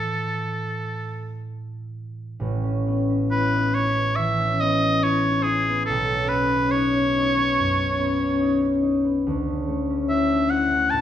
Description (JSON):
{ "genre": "classical, impressionist duo for oboe and harp", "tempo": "62-76 BPM", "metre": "4/4", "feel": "rubato", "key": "A lydian", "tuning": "A4 = 442 Hz", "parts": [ { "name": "bright oboe", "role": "melody", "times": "0.0-11.0 s", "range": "G#4 to A5", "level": "-23 LUFS", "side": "right 1 dB", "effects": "none" }, { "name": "concert harp", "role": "accompaniment", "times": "0.0-11.0 s", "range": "A1 to E4", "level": "-22 LUFS", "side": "left 1 dB", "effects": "none" } ], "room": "wet recital hall reverb, RT60 1.4 s", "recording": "minimal, uncompressed stereo recording", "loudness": "-20 LUFS", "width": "side -10 dB against mid", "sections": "0.0-2.4 A section; 2.4-11.0 B section", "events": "none", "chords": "0.0 A5; 2.4 Aadd9; 5.9 Badd9; 9.2 Dsus2", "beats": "0.53 1.45 | 2.40 3.29 4.16 5.02 | 5.87 6.73 7.57 8.41 | 9.25 10.10 10.91" }